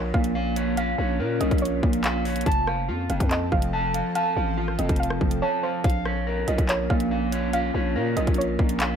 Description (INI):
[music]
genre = hip hop, drill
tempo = 142 BPM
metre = 4/4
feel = half-time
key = Bb harmonic minor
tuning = A4 = 441 Hz
[part]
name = soft round pluck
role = second line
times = 0.0-9.0 s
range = C5 to F5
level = -31 LUFS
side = right 2 dB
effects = chorus, tape echo
[part]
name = ethereal airy pad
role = sustained chords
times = 0.0-9.0 s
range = F3 to A4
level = -31 LUFS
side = left 1 dB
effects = ensemble chorus, built-in reverb, tremolo
[part]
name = electric guitar at the edge of break-up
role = arpeggios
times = 0.0-9.0 s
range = F3 to A5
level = -27 LUFS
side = right 2 dB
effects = tape echo
[part]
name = growling 808-style bass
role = bass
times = 0.0-9.0 s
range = F1 to Bb2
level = -28 LUFS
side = equal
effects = none
[part]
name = drill drum kit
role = drums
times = 0.1-8.9 s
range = handclaps, hi-hat, kick drum, rim click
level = -25 LUFS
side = equal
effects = none
[sound]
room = light reverb, digital ambience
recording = none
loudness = -22 LUFS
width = side -8 dB against mid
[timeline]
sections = 0.0-9.0 A section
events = drums muted 5.4-5.8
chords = 0.0 Bbm; 2.5 F; 5.8 Bbm